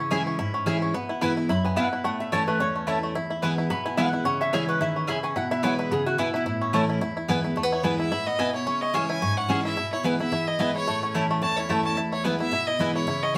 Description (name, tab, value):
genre	bluegrass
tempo	218 BPM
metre	4/4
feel	swing 56% on 8ths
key	E major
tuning	A4 = 440 Hz
part	lap resonator guitar	second line	0.0-6.9 s	E4 to B5	-31 LUFS	equal	none
part	picked steel-string acoustic guitar	accompaniment	0.0-13.4 s	E2 to E4	-30 LUFS	equal	none
part	bluegrass banjo	arpeggios	0.0-13.4 s	A3 to E4	-31 LUFS	equal	none
part	mandolin	stabs	0.1-13.4 s	A3 to A5	-31 LUFS	equal	none
part	clear fiddle	melody	7.7-13.4 s	B4 to A5	-30 LUFS	equal	none
room	moderate studio reverb, RT60 0.9 s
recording	band playing live in one room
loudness	-25 LUFS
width	mono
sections	0.0-7.6 A section; 7.6-13.4 B section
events	resonator guitar played with a steel bar solo 0.0-7.6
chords	0.0 C#m; 0.9 E/B; 2.0 A; 3.2 E; 4.3 C#m; 5.4 E/B; 6.5 A; 7.0 E; 8.7 C#m; 9.8 E/B; 10.9 A; 12.0 E